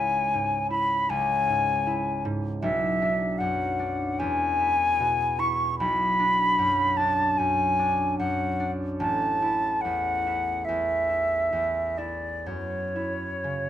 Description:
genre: classical, impressionist duo for flute and harp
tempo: 60-80 BPM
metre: 4/4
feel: rubato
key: B dorian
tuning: A4 = 440 Hz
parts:
  - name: silver concert flute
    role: melody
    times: 0.0-13.7 s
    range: C#5 to C#6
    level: -24 LUFS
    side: left 1 dB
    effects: none
  - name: concert harp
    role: accompaniment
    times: 0.0-13.7 s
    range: A1 to E4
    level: -30 LUFS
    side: right 1 dB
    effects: none
room: light reverb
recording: none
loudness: -23 LUFS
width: side -11 dB against mid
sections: 0.0-13.7 A section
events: none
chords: 0.0 C#m; 2.6 Bm; 4.2 E; 5.8 Bm; 9.0 A5; 12.5 F#5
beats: 0.34 1.10 1.85 | 2.62 3.39 4.19 4.99 | 5.78 6.58 7.38 8.19 | 9.01 9.84 10.67 11.52 | 12.47 13.45

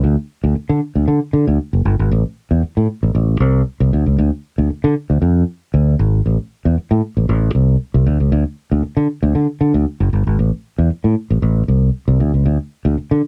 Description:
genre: funk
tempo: 116 BPM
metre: 4/4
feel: straight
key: unclear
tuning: A4 = 440 Hz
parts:
  - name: fingered electric bass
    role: solo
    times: 0.0-13.2 s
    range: F#1 to D3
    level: -16 LUFS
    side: equal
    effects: cassette tape
room: wet booth ambience, RT60 0.2 s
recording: home recording on cassette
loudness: -17 LUFS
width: mono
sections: 0.0-10.4 A section; 10.4-13.3 B section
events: none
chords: none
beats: | 0.04 0.56 1.08 1.59 | 2.11 2.63 3.15 3.66 | 4.18 4.70 5.21 5.73 | 6.25 6.77 7.28 7.80 | 8.32 8.84 9.35 9.87 | 10.39 10.90 11.42 11.94 | 12.46 12.97

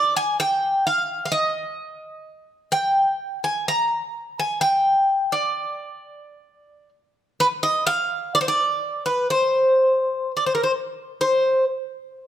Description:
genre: fado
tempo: 64 BPM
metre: 2/4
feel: rubato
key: C minor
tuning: A4 = 441 Hz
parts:
  - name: Greek bouzouki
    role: solo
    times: 0.0-11.6 s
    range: Bb4 to Bb5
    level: -20 LUFS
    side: equal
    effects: none
room: light reverb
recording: none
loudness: -19 LUFS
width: side -11 dB against mid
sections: 0.0-11.2 A section; 11.2-12.3 B section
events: none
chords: none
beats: 0.82 | 1.76 2.70 | 3.65 4.60 | 5.52 6.45 | 7.38 8.32 | 9.27 10.22 | 11.18

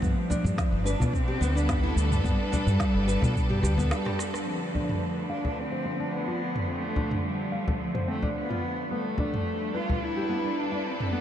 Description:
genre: organic downtempo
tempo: 108 BPM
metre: 4/4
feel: swing 53% on 16ths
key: D dorian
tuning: A4 = 439 Hz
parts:
  - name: dark cello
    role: melody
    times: 0.0-11.2 s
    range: F3 to F4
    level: -31 LUFS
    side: equal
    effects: ping-pong delay
  - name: rich studio string section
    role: sustained chords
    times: 0.0-11.2 s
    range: D3 to B4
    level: -33 LUFS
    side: right 1 dB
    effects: sidechain pumping, low-pass filter
  - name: nylon-string guitar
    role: arpeggios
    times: 0.0-11.2 s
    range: B3 to F5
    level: -34 LUFS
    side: left 1 dB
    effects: low-pass filter, ping-pong delay
  - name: woody fretless electric bass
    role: bass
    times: 0.0-3.9 s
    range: G1 to B2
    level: -26 LUFS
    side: equal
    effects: sidechain pumping
  - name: electronic kick drum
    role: drums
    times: 0.0-3.5 s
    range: none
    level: -28 LUFS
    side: equal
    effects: none
  - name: organic electronic drum kit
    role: drums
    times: 0.0-11.1 s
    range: cabasa, rim click, snare drum, toms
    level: -34 LUFS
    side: right 1 dB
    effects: none
  - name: frame drum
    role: percussion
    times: 0.3-10.0 s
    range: none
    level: -31 LUFS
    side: left 1 dB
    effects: none
room: moderate huge ambient reverb, RT60 8.2 s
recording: dreamy mix soaked in reverb, nothing above 10.3 kHz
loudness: -25 LUFS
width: side -10 dB against mid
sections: 0.0-4.5 A section; 4.5-11.2 B section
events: drum fill 3.6-4.5; break 3.9-4.5; band accent 4.3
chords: 0.0 G9; 4.5 Dm7; 8.9 G13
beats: | 0.03 0.58 1.14 1.69 | 2.25 2.80 3.36 3.91 | 4.47 5.03 5.58 6.14 | 6.69 7.25 7.80 8.36 | 8.91 9.47 10.03 10.58 | 11.14

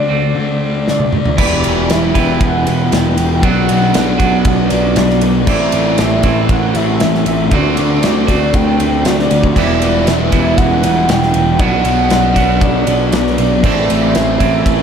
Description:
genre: rock, shoegaze and dream pop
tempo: 118 BPM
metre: 4/4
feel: straight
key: E minor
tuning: A4 = 440 Hz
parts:
  - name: warm velvety synth lead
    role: melody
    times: 0.0-14.8 s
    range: D5 to G5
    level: -19 LUFS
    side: right 2 dB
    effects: chorus, tape echo
  - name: biting overdriven guitar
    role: riff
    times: 0.0-14.8 s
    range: A2 to B4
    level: -20 LUFS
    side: right 8 dB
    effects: reverse reverb
  - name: thick fuzz guitar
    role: riff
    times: 0.0-14.8 s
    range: E2 to D4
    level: -18 LUFS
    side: left 6 dB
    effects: distortion, lush chorus
  - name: loose indie drum kit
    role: drums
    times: 0.9-14.8 s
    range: crash cymbal, kick drum, ride cymbal, snare drum, toms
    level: -17 LUFS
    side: equal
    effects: none
  - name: cranked stack guitar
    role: riff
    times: 1.4-14.8 s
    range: A2 to G4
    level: -18 LUFS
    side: right 1 dB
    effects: overdrive, wide subtle chorus
  - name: fuzz picked electric bass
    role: bass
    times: 1.4-14.8 s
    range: E1 to D2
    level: -17 LUFS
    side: equal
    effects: overdrive
room: wet plate reverb, RT60 2.3 s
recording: dreamy mix soaked in reverb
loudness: -11 LUFS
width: side -7 dB against mid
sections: 0.0-1.4 A section; 1.4-14.8 B section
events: break 0.0-1.4; drum fill 0.9-1.4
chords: 0.0 D5; 1.4 Em7; 3.4 Bm; 5.5 Am; 7.5 D7sus4; 9.6 Em7; 11.6 Bm; 13.6 Am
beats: 0.35 0.87 | 1.38 1.90 2.41 2.92 | 3.43 3.94 4.46 4.97 | 5.48 5.99 6.50 7.01 | 7.52 8.03 8.54 9.05 | 9.56 10.07 10.58 11.09 | 11.60 12.11 12.62 13.13 | 13.64 14.15 14.66

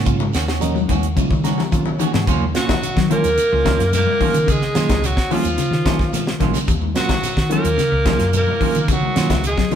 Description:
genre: afrobeat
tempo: 109 BPM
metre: 4/4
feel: straight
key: Eb minor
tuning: A4 = 440 Hz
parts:
  - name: clean electric guitar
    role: arpeggios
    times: 0.0-9.8 s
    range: Db3 to Gb3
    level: -25 LUFS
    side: left 3 dB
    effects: none
  - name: semi-hollow electric guitar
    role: stabs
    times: 0.0-9.8 s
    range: Eb3 to Gb4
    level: -27 LUFS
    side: right 7 dB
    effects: none
  - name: hollow-body short-scale fingered electric bass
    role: bass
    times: 0.0-9.6 s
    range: Bb1 to Eb3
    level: -22 LUFS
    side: equal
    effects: none
  - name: barky reed electric piano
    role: accompaniment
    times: 0.1-9.8 s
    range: Gb3 to Bb5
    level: -28 LUFS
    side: right 4 dB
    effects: overdrive, fast tremolo
  - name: tight funk drum kit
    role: drums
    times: 0.1-9.8 s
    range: hi-hat, kick drum, snare drum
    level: -22 LUFS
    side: equal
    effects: none
  - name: shekere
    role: percussion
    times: 0.1-9.8 s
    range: none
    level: -30 LUFS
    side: right 4 dB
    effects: none
  - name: congas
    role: percussion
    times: 0.2-9.8 s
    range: none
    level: -25 LUFS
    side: left 6 dB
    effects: none
  - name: edgy alto saxophone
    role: melody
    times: 2.6-9.7 s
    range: F4 to Bb4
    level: -21 LUFS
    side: equal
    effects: none
  - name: breathy tenor saxophone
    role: second line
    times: 2.6-9.7 s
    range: F3 to Bb3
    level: -27 LUFS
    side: right 3 dB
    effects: none
room: wet stone room reverb, RT60 1.2 s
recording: band playing live in one room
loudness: -15 LUFS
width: side -9 dB against mid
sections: 0.0-2.3 A section; 2.3-9.8 B section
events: drum fill 1.2-2.3; reed electric piano fill 1.2-2.3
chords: 0.0 Ebm7; 2.3 Ebm9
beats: | 0.07 0.62 1.17 1.72 | 2.27 2.82 3.37 3.92 | 4.48 5.03 5.58 6.13 | 6.68 7.23 7.78 8.33 | 8.88 9.44

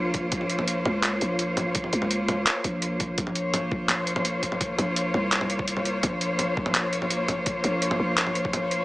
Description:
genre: half-time drum and bass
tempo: 168 BPM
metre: 4/4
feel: half-time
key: Bb minor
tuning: A4 = 438 Hz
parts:
  - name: clear studio cello section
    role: sustained chords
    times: 0.0-8.8 s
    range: Bb3 to Db5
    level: -27 LUFS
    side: left 1 dB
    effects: sidechain pumping
  - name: growling 808-style bass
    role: bass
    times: 0.0-8.8 s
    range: Bb1 to Db2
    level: -30 LUFS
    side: equal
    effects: none
  - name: boom bap sampler-style drum kit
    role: drums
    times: 0.1-8.8 s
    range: handclaps, hi-hat, toms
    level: -26 LUFS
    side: equal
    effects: overdrive
  - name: electronic kick drum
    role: drums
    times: 0.1-8.5 s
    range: none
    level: -33 LUFS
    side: equal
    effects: overdrive
room: moderate digital room reverb, RT60 1.3 s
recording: small speaker sound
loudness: -23 LUFS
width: side -19 dB against mid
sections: 0.0-3.2 A section; 3.2-8.8 A section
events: drop 0.0-3.2, 3.2-8.8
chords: 0.0 Bbmadd9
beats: | 0.32 0.68 1.03 1.39 | 1.75 2.11 2.46 2.82 | 3.18 3.54 3.89 4.25 | 4.61 4.96 5.32 5.68 | 6.04 6.39 6.75 7.11 | 7.46 7.82 8.18 8.54

